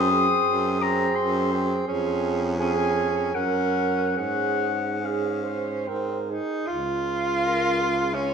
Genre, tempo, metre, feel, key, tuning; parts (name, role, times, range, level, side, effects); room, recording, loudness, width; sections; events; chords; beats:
classical, lyrical piece for single-reed quartet; 70-85 BPM; 3/4; rubato; Db major; A4 = 439 Hz
warm clarinet; melody; 0.0-8.3 s; F4 to Eb6; -26 LUFS; left 6 dB
warm alto saxophone; second line; 0.0-8.3 s; Ab4 to F5; -28 LUFS; right 10 dB
warm tenor saxophone; accompaniment; 0.0-8.3 s; C4 to F4; -27 LUFS; left 1 dB
clear baritone saxophone; bass; 0.0-8.3 s; Db2 to Ab2; -28 LUFS; right 2 dB
wet recital hall reverb, RT60 1.5 s; minimal, uncompressed stereo recording; -22 LUFS; side -6 dB against mid
0.0-6.7 A section; 6.7-8.3 B section
0.0 Ab7/Gb; 1.9 Db/F; 3.3 Gb; 4.2 Db/Ab; 5.9 Ab; 6.7 Db
0.46 1.16 | 1.88 2.59 3.35 | 4.18 5.04 5.89 | 6.70 7.44 8.16